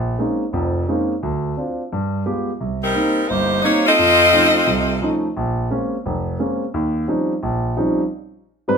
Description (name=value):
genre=jazz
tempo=174 BPM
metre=4/4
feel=swing 65% on 8ths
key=unclear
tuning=A4 = 440 Hz
part: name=warm grand piano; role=accompaniment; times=0.0-8.8 s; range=F1 to Cb5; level=-20 LUFS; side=right 1 dB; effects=none
part: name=edgy saxophone section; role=melody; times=2.8-5.2 s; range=G3 to Eb5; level=-14 LUFS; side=left 1 dB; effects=none
room=wet large studio reverb, RT60 0.9 s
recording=minimal, uncompressed stereo recording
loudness=-16 LUFS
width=side -6 dB against mid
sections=0.0-8.1 A section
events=none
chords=0.0 Bbm11; 1.2 Dm7; 1.9 G7b9; 2.6 Cm7; 4.0 F7b13; 5.4 Bbm9; 6.7 Eb13; 8.1 Abmaj7